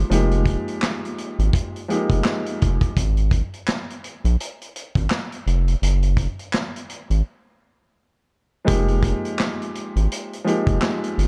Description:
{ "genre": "hip hop, boom-bap hip-hop", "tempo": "84 BPM", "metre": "4/4", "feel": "swing 58% on 16ths", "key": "F minor", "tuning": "A4 = 444 Hz", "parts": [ { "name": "dark concert grand piano", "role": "accompaniment", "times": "0.0-2.9, 8.6-11.3 s", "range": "F3 to G4", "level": "-26 LUFS", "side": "equal", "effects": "cassette tape, high-pass filter, low-pass filter" }, { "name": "round analog bass", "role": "bass", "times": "0.0-11.3 s", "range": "F1 to Bb1", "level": "-22 LUFS", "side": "equal", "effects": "none" }, { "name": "vintage drum kit", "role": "drums", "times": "0.1-11.3 s", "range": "handclaps, hi-hat, kick drum, snare drum", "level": "-26 LUFS", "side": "equal", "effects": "none" } ], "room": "small room ambience", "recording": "dark, warm production", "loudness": "-22 LUFS", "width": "mono", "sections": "0.0-11.3 A section", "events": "break 3.0-8.7", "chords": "0.0 Fm11; 3.0 N.C.; 8.7 Fm11" }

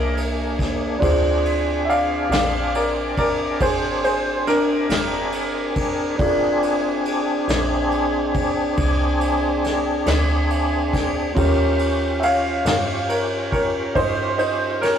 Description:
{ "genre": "slow blues", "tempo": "46 BPM (dotted quarters)", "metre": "12/8", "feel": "straight", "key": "Bb mixolydian", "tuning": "A4 = 440 Hz", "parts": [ { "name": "clear upright piano", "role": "second line", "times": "0.0-15.0 s", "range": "D4 to F5", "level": "-21 LUFS", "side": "equal", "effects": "tape echo" }, { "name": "warm concert grand piano", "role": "accompaniment", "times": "0.0-15.0 s", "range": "Db4 to C6", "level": "-26 LUFS", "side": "right 1 dB", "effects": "none" }, { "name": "tonewheel organ", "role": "sustained chords", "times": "0.0-15.0 s", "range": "Bb3 to Ab4", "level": "-24 LUFS", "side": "left 1 dB", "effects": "overdrive, chorus vibrato, slow rotary speaker" }, { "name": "woody FM bass", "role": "bass", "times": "0.0-15.0 s", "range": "F1 to G2", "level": "-26 LUFS", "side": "equal", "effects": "none" }, { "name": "vintage brush drum kit", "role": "drums", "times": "0.2-15.0 s", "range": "kick drum, ride cymbal, snare drum", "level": "-26 LUFS", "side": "equal", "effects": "none" } ], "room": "moderate stone room reverb, RT60 1.0 s", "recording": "rough rehearsal-room recording, warm saturation", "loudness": "-18 LUFS", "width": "side -8 dB against mid", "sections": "0.0-15.0 A section", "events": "upright piano solo 0.0-15.0", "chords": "0.0 Bb9; 11.4 Eb9" }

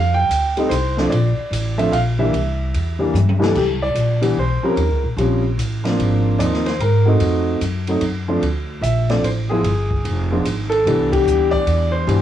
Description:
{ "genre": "jazz piano trio", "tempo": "148 BPM", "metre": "3/4", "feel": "swing 65% on 8ths", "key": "unclear", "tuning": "A4 = 440 Hz", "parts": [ { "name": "warm concert grand piano", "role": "melody", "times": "0.0-12.2 s", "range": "C2 to G5", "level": "-19 LUFS", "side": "equal", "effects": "cassette tape, plate reverb" }, { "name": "upright bass", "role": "bass", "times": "0.0-12.2 s", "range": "F1 to Ab2", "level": "-19 LUFS", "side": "equal", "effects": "transformer saturation" }, { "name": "open jazz drum kit", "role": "drums", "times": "0.3-12.2 s", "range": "crash cymbal, hi-hat, kick drum, ride cymbal, snare drum, toms", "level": "-28 LUFS", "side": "right 1 dB", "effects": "cassette tape" } ], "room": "moderate booth ambience, RT60 0.2 s", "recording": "home recording on cassette", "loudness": "-16 LUFS", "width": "side -11 dB against mid", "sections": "0.0-3.6 A section; 3.6-12.2 B section", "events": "drum fill 3.1-3.6; band accent 11.1", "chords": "0.0 F; 1.1 Bbmaj7; 2.3 C; 3.6 Cmaj7(no3); 4.8 Ebsus2 (rootless); 6.0 Ab6; 7.2 F7b9; 8.4 Bbmaj7; 9.6 G7(no3); 10.9 Cmaj7" }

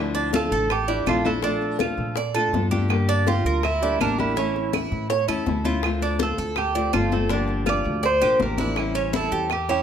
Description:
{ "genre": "latin, Cuban son and guajira", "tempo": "164 BPM", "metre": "4/4", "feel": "straight", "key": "D minor", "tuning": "A4 = 435 Hz", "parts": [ { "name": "nylon-string guitar", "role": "accompaniment", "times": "0.0-9.8 s", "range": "D3 to G4", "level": "-28 LUFS", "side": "left 4 dB", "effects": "none" }, { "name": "upright bass", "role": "bass", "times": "0.0-9.8 s", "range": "G1 to Bb2", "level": "-27 LUFS", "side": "equal", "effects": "none" }, { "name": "Cuban tres", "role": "arpeggios", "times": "0.1-9.8 s", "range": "C#4 to D5", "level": "-27 LUFS", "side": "right 5 dB", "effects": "none" }, { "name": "bongos", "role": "percussion", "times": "0.1-9.8 s", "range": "none", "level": "-32 LUFS", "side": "left 7 dB", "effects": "none" }, { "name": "congas", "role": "percussion", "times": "0.2-9.8 s", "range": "none", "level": "-30 LUFS", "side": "left 5 dB", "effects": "none" }, { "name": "Cuban tres", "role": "melody", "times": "0.4-9.8 s", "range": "D4 to D5", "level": "-25 LUFS", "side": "right 2 dB", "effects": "tape echo" }, { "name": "claves", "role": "percussion", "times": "0.7-9.7 s", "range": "none", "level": "-32 LUFS", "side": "right 11 dB", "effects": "none" } ], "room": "light reverb", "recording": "close, detailed microphones", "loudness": "-20 LUFS", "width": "side -8 dB against mid", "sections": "0.0-9.8 A section", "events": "none", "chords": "0.0 Dmadd9; 1.4 Bbmaj7; 2.9 Gm; 4.4 A; 5.8 Dm7; 7.3 Gm7; 8.8 A7" }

